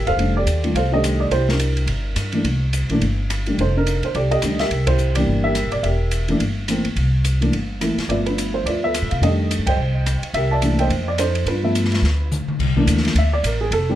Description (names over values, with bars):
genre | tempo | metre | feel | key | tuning
jazz piano trio | 213 BPM | 4/4 | swing 59% on 8ths | C mixolydian | A4 = 440 Hz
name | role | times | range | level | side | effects
dark upright piano | melody | 0.0-14.0 s | Eb3 to A5 | -21 LUFS | right 1 dB | plate reverb
upright bass | bass | 0.0-14.0 s | E1 to C3 | -20 LUFS | equal | none
open jazz drum kit | drums | 0.1-13.8 s | crash cymbal, hi-hat, kick drum, ride cymbal, rim click, snare drum, toms | -26 LUFS | left 1 dB | none
room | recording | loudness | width
light reverb | none | -17 LUFS | side -12 dB against mid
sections
0.0-12.6 A section; 12.6-14.0 B section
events
band accent 4.8, 9.6; drum fill 12.0-12.6; upright piano solo 12.6-14.0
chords
0.2 F13; 1.3 C9; 3.6 F13; 4.7 C9; 8.1 G13; 9.2 F13; 10.3 C13; 10.9 F7; 11.5 G13; 12.6 C13